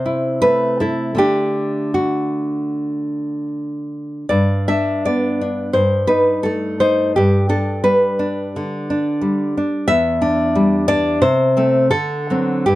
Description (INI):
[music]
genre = romantic piece for solo classical guitar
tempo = 75-91 BPM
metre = 4/4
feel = rubato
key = G major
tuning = A4 = 440 Hz
[part]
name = nylon-string guitar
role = solo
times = 0.0-12.8 s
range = E2 to E5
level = -15 LUFS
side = equal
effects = none
[sound]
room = light reverb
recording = dry, close 1970s-style studio recording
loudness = -15 LUFS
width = side -16 dB against mid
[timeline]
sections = 0.0-12.8 A section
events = none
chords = 0.0 Am/C; 1.2 D; 4.3 G; 5.7 Am9b5/G; 7.1 G; 9.9 Em7; 11.2 Am/C; 11.9 D7